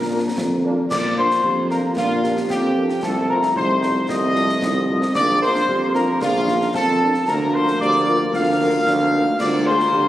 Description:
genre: military-style march for wind band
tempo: 113 BPM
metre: 2/4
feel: straight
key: Bb major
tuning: A4 = 440 Hz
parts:
  - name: dark trumpet section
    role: melody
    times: 0.0-10.1 s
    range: F4 to F5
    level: -24 LUFS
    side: equal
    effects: none
  - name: dark euphonium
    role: second line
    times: 0.0-10.0 s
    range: C4 to G4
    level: -30 LUFS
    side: right 2 dB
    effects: none
  - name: mellow hollow wooden piccolo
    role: second line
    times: 0.0-10.1 s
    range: F5 to F6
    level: -22 LUFS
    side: left 1 dB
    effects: none
  - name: warm tuba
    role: bass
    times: 0.0-10.1 s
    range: Bb1 to Bb2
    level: -21 LUFS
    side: right 1 dB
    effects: none
  - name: mellow French horn section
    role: accompaniment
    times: 0.1-9.8 s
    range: Bb3 to Bb4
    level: -30 LUFS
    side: left 3 dB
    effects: none
  - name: clear trombone section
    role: sustained chords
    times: 0.1-10.1 s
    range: F3 to D4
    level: -29 LUFS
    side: right 1 dB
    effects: none
  - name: concert snare drum, concert bass drum and clash cymbals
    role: drums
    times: 0.4-10.1 s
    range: none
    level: -29 LUFS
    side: left 1 dB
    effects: none
room: wet concert hall reverb, RT60 2.1 s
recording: recorded on a phone in the room, studio reverb, compression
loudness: -16 LUFS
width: side -13 dB against mid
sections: 0.9-10.1 A section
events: none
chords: 0.0 Bb; 3.0 F7/C; 5.2 Bb; 7.3 Bb/D; 9.4 Bb7/D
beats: 0.37 | 0.91 1.44 | 1.97 2.50 | 3.03 3.56 | 4.09 4.62 | 5.15 5.68 | 6.21 6.75 | 7.28 7.81 | 8.34 8.87 | 9.40 9.93

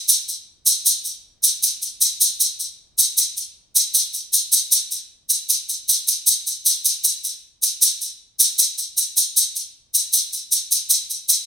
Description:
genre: bossa nova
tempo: 155 BPM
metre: 4/4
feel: straight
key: none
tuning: none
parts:
  - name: egg shaker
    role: percussion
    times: 0.1-11.5 s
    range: none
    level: -15 LUFS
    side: equal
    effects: none
room: light reverb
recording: none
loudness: -15 LUFS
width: side -8 dB against mid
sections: 0.0-11.5 A section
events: none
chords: none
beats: 0.08 0.47 | 0.86 1.24 1.63 2.02 | 2.40 2.79 3.18 3.56 | 3.95 4.34 4.72 5.11 | 5.50 5.88 6.27 6.66 | 7.04 7.43 7.82 8.20 | 8.59 8.97 9.36 9.75 | 10.13 10.52 10.91 11.29

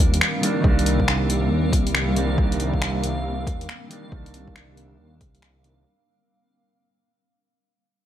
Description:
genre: future garage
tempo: 138 BPM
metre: 4/4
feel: swing 64% on 16ths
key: C minor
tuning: A4 = 443 Hz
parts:
  - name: mellow electric guitar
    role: accompaniment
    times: 0.0-5.9 s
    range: Eb3 to D4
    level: -27 LUFS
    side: right 2 dB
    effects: sidechain pumping, low-pass filter, tape echo
  - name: granular cloud pad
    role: sustained chords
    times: 0.0-5.9 s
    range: Eb3 to Bb4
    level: -28 LUFS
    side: equal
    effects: built-in reverb, sidechain pumping
  - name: swelling detuned saw bass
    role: bass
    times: 0.0-5.8 s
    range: C2 to Eb2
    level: -24 LUFS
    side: equal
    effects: sidechain pumping
  - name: backwards swelling texture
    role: texture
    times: 0.1-5.9 s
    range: F5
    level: -36 LUFS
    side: right 2 dB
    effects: built-in reverb
  - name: deep house drum kit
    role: drums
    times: 0.1-5.8 s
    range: finger snaps, hi-hat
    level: -24 LUFS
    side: left 1 dB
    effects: none
  - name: electronic kick drum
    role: drums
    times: 0.6-5.3 s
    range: none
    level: -21 LUFS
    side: equal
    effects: none
room: light reverb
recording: vinyl crackle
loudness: -19 LUFS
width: side -11 dB against mid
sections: 0.0-5.9 A section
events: fade-out 0.0-5.9; filter sweep on clean electric guitar 0.0-5.9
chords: 0.0 Cm7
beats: 0.21 | 0.64 1.08 1.51 1.95 | 2.38 2.81 3.25 3.68 | 4.12 4.55 4.99 5.42

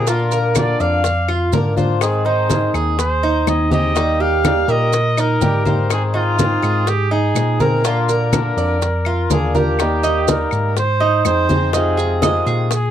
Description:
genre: latin, Cuban son and guajira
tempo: 124 BPM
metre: 4/4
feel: straight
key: Eb major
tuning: A4 = 440 Hz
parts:
  - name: warm trumpet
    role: melody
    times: 0.0-12.9 s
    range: F4 to F5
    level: -21 LUFS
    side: equal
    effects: none
  - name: fingerpicked swing-style acoustic guitar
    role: accompaniment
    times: 0.0-12.8 s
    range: C3 to Ab4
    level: -23 LUFS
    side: left 4 dB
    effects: none
  - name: Cuban tres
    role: arpeggios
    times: 0.0-12.9 s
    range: Eb4 to Eb5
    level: -20 LUFS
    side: right 3 dB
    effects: none
  - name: mellow tine electric piano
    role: bass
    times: 0.0-12.9 s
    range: Eb2 to Bb2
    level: -20 LUFS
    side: equal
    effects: medium stereo tremolo
  - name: bongos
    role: percussion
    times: 0.1-12.9 s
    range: none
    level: -26 LUFS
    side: left 12 dB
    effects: none
  - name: congas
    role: percussion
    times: 0.1-12.9 s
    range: none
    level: -22 LUFS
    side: right 1 dB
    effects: none
  - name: maracas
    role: percussion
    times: 0.1-12.9 s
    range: none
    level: -29 LUFS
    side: right 19 dB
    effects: none
  - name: claves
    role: percussion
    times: 0.6-12.5 s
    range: none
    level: -28 LUFS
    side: left 16 dB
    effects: none
room: little or no reverb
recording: dry, close 1970s-style studio recording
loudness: -14 LUFS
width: side -10 dB against mid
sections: 0.0-9.8 A section; 9.8-12.9 B section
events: none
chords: 0.1 Bb; 2.0 Ab; 4.0 Eb; 5.9 Ab; 7.8 Bb; 9.8 Eb; 10.8 Ab; 11.7 Fm7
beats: | 0.08 0.56 1.04 1.53 | 2.02 2.50 2.99 3.47 | 3.96 4.44 4.93 5.41 | 5.90 6.39 6.87 7.36 | 7.84 8.33 8.82 9.30 | 9.79 10.28 10.76 11.25 | 11.74 12.23 12.71

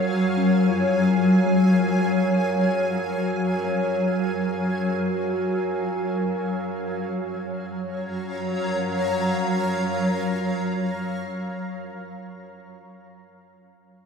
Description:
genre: ambient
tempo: free time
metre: none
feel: none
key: Gb major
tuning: A4 = 441 Hz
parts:
  - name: granular cloud pad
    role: sustained chords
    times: 0.0-12.0 s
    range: Gb3 to Bb5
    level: -23 LUFS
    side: equal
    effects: built-in reverb
  - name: overtone-sweeping drone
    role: drone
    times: 0.0-11.6 s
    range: Gb3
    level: -28 LUFS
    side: left 1 dB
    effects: chorus, built-in reverb, phaser
  - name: glass harmonica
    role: texture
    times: 0.0-6.9 s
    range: Bb4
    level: -34 LUFS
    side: right 3 dB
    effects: none
  - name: soft round pluck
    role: arpeggios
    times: 0.4-11.6 s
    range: Ab3 to Gb4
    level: -39 LUFS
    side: right 1 dB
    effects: none
room: wet spring reverb, RT60 2.4 s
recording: echo-heavy mix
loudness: -21 LUFS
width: side -6 dB against mid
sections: 0.0-6.9 A section; 6.9-11.3 B section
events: none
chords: 0.0 Gbmaj7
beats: free time

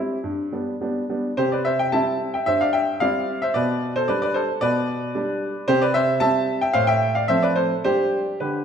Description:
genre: classical-period piano sonatina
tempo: 111 BPM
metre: 4/4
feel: uneven beats, rubato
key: C major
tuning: A4 = 440 Hz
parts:
  - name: bright baby grand piano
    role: solo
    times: 0.0-8.6 s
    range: G2 to A5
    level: -20 LUFS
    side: equal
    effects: none
room: wet recital hall reverb, RT60 1.7 s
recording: minimal, uncompressed stereo recording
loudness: -19 LUFS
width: side -7 dB against mid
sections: 0.0-1.4 A section; 1.4-8.6 B section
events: none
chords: 0.2 G; 1.4 C; 3.6 G/B; 5.7 C; 6.7 F/A; 7.8 G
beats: 0.24 0.81 | 1.38 1.93 2.48 3.02 | 3.56 4.09 4.62 5.15 | 5.68 6.21 6.74 7.29 | 7.85 8.41

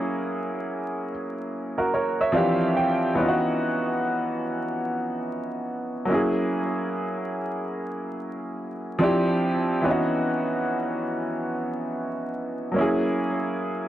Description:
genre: hip hop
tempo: 72 BPM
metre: 4/4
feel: swing 65% on 16ths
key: C# dorian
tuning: A4 = 440 Hz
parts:
  - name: bright upright piano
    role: solo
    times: 0.0-13.9 s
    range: E3 to G5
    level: -23 LUFS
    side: equal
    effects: low-pass filter, analog delay
room: light reverb, studio ambience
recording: vinyl crackle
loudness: -23 LUFS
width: side -12 dB against mid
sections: 0.0-13.9 A section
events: upright piano fill 1.5-3.2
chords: 0.0 F#9; 2.3 Dm11; 3.2 C#m11; 6.1 F#9; 9.0 Dm11; 9.8 C#m11; 12.8 F#9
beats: 0.68 1.51 2.34 | 3.18 4.01 4.84 5.68 | 6.51 7.34 8.18 9.01 | 9.84 10.68 11.51 12.34 | 13.18

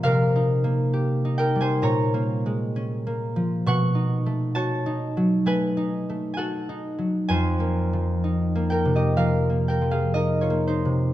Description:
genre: classical, solo harp piece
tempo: 58-68 BPM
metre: 4/4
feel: rubato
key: unclear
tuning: A4 = 438 Hz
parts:
  - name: concert harp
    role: solo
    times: 0.0-11.1 s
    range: F2 to C#6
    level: -21 LUFS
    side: equal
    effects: none
room: wet recital hall reverb, RT60 1.8 s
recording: dark, warm production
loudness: -21 LUFS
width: side -14 dB against mid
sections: 0.0-11.1 A section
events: none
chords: 0.0 Cm7; 1.8 Bbm9; 3.7 B9; 7.3 F7sus4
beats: | 0.04 0.93 1.84 2.75 | 3.66 4.56 5.46 6.37 | 7.29 8.22 9.17 10.14

